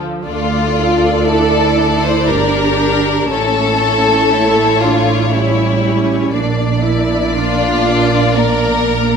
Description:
classical, slow romantic movement for string orchestra; 60 BPM; 3/4; rubato; D minor; A4 = 440 Hz
rich studio viola section; accompaniment; 0.0-9.2 s; F3 to A4; -19 LUFS; right 1 dB
rich studio double bass section; bass; 0.0-9.2 s; G1 to D2; -18 LUFS; right 5 dB
warm studio cello section; bass; 0.0-9.2 s; A3 to F4; -19 LUFS; right 2 dB
rich studio violin section; melody; 0.3-9.2 s; C#5 to D5; -21 LUFS; left 5 dB
clear studio violin section; second line; 0.3-9.2 s; E4 to C5; -16 LUFS; left 3 dB
moderate concert hall reverb, RT60 2.1 s; -11 LUFS; side -6 dB against mid
0.3-9.2 A section
0.3 Dm; 2.3 Gm; 3.3 A; 5.3 A7; 6.3 Bb
| 0.26 1.29 2.30 | 3.31 4.32 5.33 | 6.33 7.33 8.37

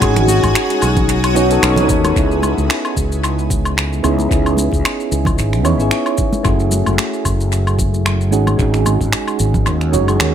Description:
sunset chillout; 112 BPM; 4/4; swing 56% on 16ths; C# minor; A4 = 442 Hz
soft electric-piano-like synth keys; accompaniment; 0.0-10.3 s; G#3 to C#5; -18 LUFS; right 2 dB; chorus, auto-pan, analog delay
shimmering ambient pad; sustained chords; 0.0-2.1 s; F#4 to D#6; -22 LUFS; left 3 dB; chorus, built-in reverb, phaser
concert harp; arpeggios; 0.0-5.0 s; B3 to G#4; -23 LUFS; left 2 dB; analog delay
fretless electric bass; bass; 0.0-10.3 s; F#1 to E2; -17 LUFS; equal; ensemble chorus
deep house drum kit; drums; 0.0-10.3 s; finger snaps, hi-hat, shaker, woodblock; -21 LUFS; equal; overdrive, tape echo
electronic kick drum; drums; 0.0-9.6 s; -20 LUFS; equal
congas; percussion; 0.2-9.6 s; -24 LUFS; right 2 dB
light reverb; echo-heavy mix; -13 LUFS; side -9 dB against mid
0.0-2.2 A section; 2.2-10.3 B section
0.0 G#7sus4; 1.1 B9; 2.2 C#m7; 6.4 F#m9; 8.3 G#7sus4
| 0.02 0.55 1.09 1.62 | 2.16 2.69 3.23 3.77 | 4.30 4.84 5.37 5.91 | 6.45 6.98 7.52 8.05 | 8.59 9.12 9.66 10.20

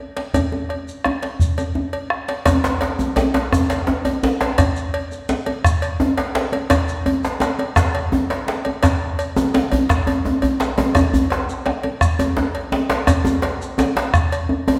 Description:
west african traditional, West African drum ensemble; 113 BPM (dotted quarters); 12/8; straight
djembe; percussion; 0.0-14.7 s; -27 LUFS; equal
cowbell; percussion; 0.2-14.8 s; -29 LUFS; equal
bombo; percussion; 0.3-14.3 s; -23 LUFS; equal
shekere; percussion; 0.3-14.4 s; -33 LUFS; equal
djembe; percussion; 2.5-14.8 s; -22 LUFS; equal
wet recital hall reverb, RT60 1.5 s; -20 LUFS; mono
0.0-2.5 A section; 2.5-14.8 B section
| 0.34 0.87 1.40 1.93 | 2.46 3.00 3.53 4.06 | 4.59 5.12 5.65 6.18 | 6.71 7.24 7.77 8.30 | 8.83 9.36 9.89 10.43 | 10.96 11.49 12.02 12.55 | 13.08 13.61 14.14 14.67

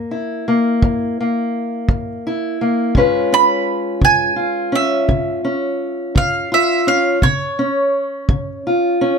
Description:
acoustic country blues, solo or duo; 56 BPM (dotted quarters); 12/8; straight; A4 = 440 Hz
fingerpicked steel-string acoustic guitar; accompaniment; 0.0-9.2 s; F#2 to B4; -17 LUFS; left 1 dB
kick drum; drums; 0.8-8.5 s; -18 LUFS; equal
bowl-back mandolin; melody; 3.3-9.2 s; C#5 to B5; -17 LUFS; right 4 dB
moderate small room reverb, RT60 0.6 s; -15 LUFS; side -6 dB against mid
0.0-9.2 A section
0.0 F#7; 3.0 C#7
0.82 1.89 | 2.95 4.02 5.08 6.15 | 7.22 8.29

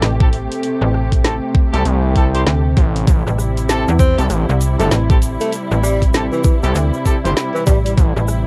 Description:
glitch hop; 98 BPM; 4/4; swing 61% on 16ths; A minor pentatonic; A4 = 440 Hz
muted studio string section; sustained chords; 0.0-8.5 s; C3 to G4; -25 LUFS; equal; sidechain pumping, cassette tape
slap-like FM bass; bass; 0.0-8.5 s; A1 to E2; -19 LUFS; equal
drum and bass drum kit; drums; 0.0-8.4 s; hi-hat, rim click, snare drum; -24 LUFS; equal; overdrive, cassette tape
clear horn section; stabs; 0.2-7.3 s; C4 to C5; -26 LUFS; equal; vintage 12-bit sampler grit, sidechain pumping, cassette tape, tape echo
electronic kick drum; drums; 0.2-8.1 s; -16 LUFS; equal; overdrive, cassette tape
gritty driven synth bass; bass; 1.7-8.1 s; G1 to C2; -19 LUFS; equal; tube saturation
tube shaker; percussion; 3.1-8.4 s; -36 LUFS; equal
breathy tenor saxophone; melody; 4.0-7.9 s; E3 to C4; -24 LUFS; equal; cassette tape, tape echo
light reverb; home recording on cassette; -16 LUFS; mono
0.0-8.5 A section
0.0 Am7
0.02 | 0.63 1.24 1.86 2.47 | 3.08 3.69 4.30 4.92 | 5.53 6.14 6.75 7.37 | 7.98

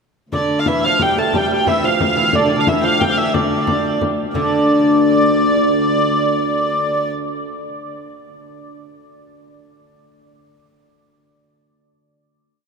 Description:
medieval dance; 119 BPM (dotted quarters); 6/8; straight; D minor; A4 = 440 Hz
dark hurdy-gurdy; melody; 0.3-7.1 s; D5 to A5; -18 LUFS; right 1 dB
lute; second line; 0.3-7.7 s; D3 to A3; -19 LUFS; equal
warm viola da gamba; drone; 0.3-7.2 s; D2; -26 LUFS; equal
frame drum; percussion; 0.3-4.5 s; -24 LUFS; left 4 dB
wet cathedral reverb, RT60 5.5 s; in a vast, echoing space; -14 LUFS; side -5 dB against mid
0.3-4.3 A section; 4.3-6.4 final note
| 0.32 0.82 | 1.33 1.83 | 2.34 2.84 | 3.34 3.85 | 4.35 4.85 | 5.36 5.86

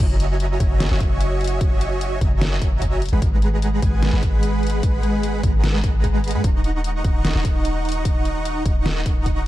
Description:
future bass; 149 BPM; 4/4; swing 54% on 16ths, half-time; A4 = 439 Hz
dense compressed supersaw; riff; 0.0-9.5 s; G#3 to C#6; -25 LUFS; right 1 dB; vintage 12-bit sampler grit, sidechain pumping, ping-pong delay
warm 808-style bass; bass; 0.0-9.5 s; D#1 to G#2; -22 LUFS; equal; sidechain pumping
dubstep drum kit; drums; 0.0-9.3 s; crash cymbal, hi-hat, snare drum; -28 LUFS; left 1 dB
electronic kick drum; drums; 0.0-9.3 s; -20 LUFS; equal
little or no reverb; dark, warm production; -18 LUFS; side -15 dB against mid
0.0-9.5 A section
drop 0.0-9.5
0.0 F#13; 3.0 G#m7; 6.4 D#m7
| 0.00 0.40 0.80 1.21 | 1.61 2.01 2.42 2.82 | 3.22 3.62 4.03 4.43 | 4.83 5.23 5.64 6.04 | 6.44 6.84 7.25 7.65 | 8.05 8.46 8.86 9.26

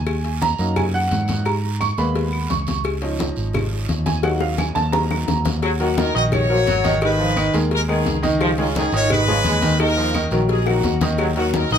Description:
latin, salsa; 173 BPM; 4/4; straight; Eb minor; A4 = 440 Hz
bright upright piano; accompaniment; 0.0-11.8 s; Eb3 to Db6; -22 LUFS; right 1 dB
fingered electric bass; bass; 0.0-11.8 s; Ab1 to Ab2; -22 LUFS; equal
claves; percussion; 0.1-11.4 s; -33 LUFS; left 5 dB
congas; percussion; 0.1-11.8 s; -26 LUFS; left 2 dB
cowbell and bongos; percussion; 0.1-11.7 s; -28 LUFS; left 5 dB
guiro; percussion; 0.1-11.8 s; -34 LUFS; right 6 dB
bright trombone section; second line; 5.6-11.8 s; Eb3 to Ab3; -25 LUFS; equal
brilliant horn section; melody; 5.8-11.8 s; Ab3 to Eb5; -22 LUFS; left 2 dB
light reverb; minimal, uncompressed stereo recording; -17 LUFS; side -8 dB against mid
0.0-5.6 A section; 5.6-11.8 B section
upright piano solo 0.0-5.6; drum fill 4.2-5.6, 10.7-11.2
0.0 Ebm; 1.5 Abmadd9; 2.8 Dbadd9; 4.2 Ebm; 7.0 Abmadd9; 8.4 Dbadd9; 9.8 Ebm
| 0.07 0.41 0.76 1.11 | 1.46 1.80 2.15 2.50 | 2.85 3.19 3.54 3.89 | 4.24 4.59 4.93 5.28 | 5.63 5.98 6.32 6.67 | 7.02 7.37 7.71 8.06 | 8.41 8.75 9.10 9.45 | 9.80 10.14 10.49 10.84 | 11.19 11.53

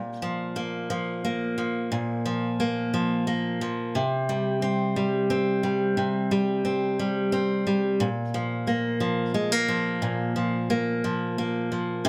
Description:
pop; 59 BPM (dotted quarters); 6/8; straight; A4 = 441 Hz
picked steel-string acoustic guitar; solo; 0.0-12.1 s; Bb2 to C4; -26 LUFS; equal
moderate plate reverb, RT60 2.3 s; -26 LUFS; mono
0.0-12.1 A section
0.0 Bb5; 4.0 C5; 8.0 Bb5
0.91 | 1.92 2.94 | 3.95 4.96 | 5.98 6.99 | 8.00 9.02 | 10.03 11.04 | 12.05

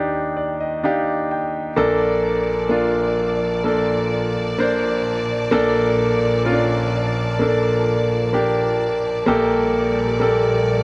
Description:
pop ballad; 64 BPM; 4/4; straight; Bb major; A4 = 440 Hz
clear concert grand piano; accompaniment; 0.0-10.8 s; Bb1 to G5; -20 LUFS; equal
warm symphonic string section; sustained chords; 1.8-10.8 s; Bb2 to A5; -27 LUFS; equal
light reverb; -20 LUFS; mono
0.0-10.8 A section
grand piano fill 0.0-1.8
0.0 Ebmaj7; 1.8 Bbmaj7; 9.3 Gmadd9/Bb
0.83 | 1.77 2.71 3.65 4.58 | 5.52 6.46 7.40 8.34 | 9.27 10.21

